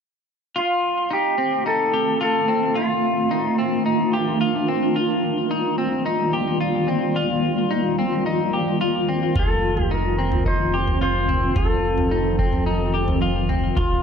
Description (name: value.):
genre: dream pop.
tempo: 109 BPM.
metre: 4/4.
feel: straight.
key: unclear.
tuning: A4 = 445 Hz.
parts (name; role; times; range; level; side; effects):
clean lap steel guitar; melody; 0.6-4.4, 9.4-14.0 s; F4 to C5; -23 LUFS; left 1 dB; ping-pong delay.
granular cloud pad; sustained chords; 1.4-14.0 s; Eb3 to F4; -22 LUFS; equal; built-in reverb.
clean electric guitar; arpeggios; 0.6-14.0 s; C4 to G4; -25 LUFS; left 3 dB; wide subtle chorus, ping-pong delay.
sub bass with octave; bass; 9.4-14.0 s; Eb1 to F1; -25 LUFS; equal; none.
booming analog drum machine; drums; 9.4-14.0 s; kick drum, toms; -24 LUFS; equal; none.
room: light reverb.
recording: dark, warm production.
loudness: -19 LUFS.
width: side -6 dB against mid.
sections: 0.6-14.0 A section.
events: none.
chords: 0.6 F7; 5.0 Ebadd9; 9.4 F7.